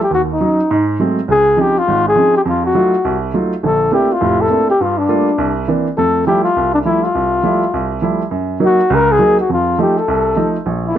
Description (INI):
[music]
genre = jazz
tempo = 205 BPM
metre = 4/4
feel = swing 60% on 8ths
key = unclear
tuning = A4 = 442 Hz
[part]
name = breathy flugelhorn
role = melody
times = 0.0-11.0 s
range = D4 to Bb4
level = -14 LUFS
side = left 2 dB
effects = plate reverb
[part]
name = clear baby grand piano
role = accompaniment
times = 0.1-11.0 s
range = F1 to F4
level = -16 LUFS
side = right 3 dB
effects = none
[sound]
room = moderate studio reverb, RT60 0.6 s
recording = dark, warm production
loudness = -12 LUFS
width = side -10 dB against mid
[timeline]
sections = 0.0-8.3 A section; 8.3-11.0 B section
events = none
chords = 0.1 Ebm7; 0.7 Ab7b9; 1.3 Dbmaj9; 2.5 F7b9; 3.6 Bbmaj9#11; 4.8 Gm9; 5.4 C9; 6.0 Fmaj9; 8.3 Gb6; 9.5 F7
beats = | 0.11 0.41 0.70 0.99 | 1.28 1.58 1.87 2.16 | 2.46 2.75 3.04 3.33 | 3.63 3.92 4.21 4.51 | 4.80 5.09 5.38 5.68 | 5.97 6.26 6.56 6.85 | 7.14 7.44 7.73 8.02 | 8.32 8.61 8.90 9.20 | 9.49 9.78 10.07 10.37 | 10.66 10.95